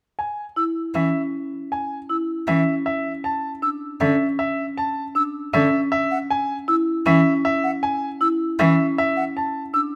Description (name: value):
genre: classical, minimalist pattern music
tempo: 157 BPM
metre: 4/4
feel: straight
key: unclear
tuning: A4 = 440 Hz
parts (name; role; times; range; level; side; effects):
- clear concert grand piano; melody; 0.2-9.6 s; E5 to A5; -26 LUFS; equal; none
- marimba with medium mallets; arpeggios; 0.6-10.0 s; C#4 to E4; -26 LUFS; equal; none
- mellow hollow concert flute; arpeggios; 0.6-9.8 s; F#5 to E6; -25 LUFS; equal; none
- warm cello; accompaniment; 0.9-8.7 s; D3 to E3; -24 LUFS; equal; none
room: light reverb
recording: close, detailed microphones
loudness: -22 LUFS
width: mono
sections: 0.0-10.0 A section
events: none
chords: 0.0 E5; 2.9 Dsus2; 5.9 E5; 9.0 Dadd9